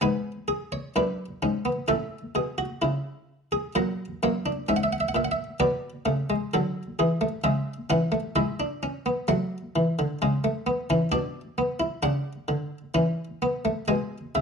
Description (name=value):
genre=classical, baroque-style 4-part fugue for harpsichord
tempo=65 BPM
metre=4/4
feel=straight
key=unclear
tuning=A4 = 440 Hz
part: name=buff-stop harpsichord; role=solo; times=0.0-14.4 s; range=F#2 to G#5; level=-24 LUFS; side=equal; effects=none
room=moderate studio reverb, RT60 0.9 s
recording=dark, warm production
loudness=-24 LUFS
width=side -6 dB against mid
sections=0.0-14.4 A section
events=none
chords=0.0 Bm69; 1.9 A; 3.8 F#7; 5.6 Bm; 7.5 C#m; 11.1 Bm; 13.0 E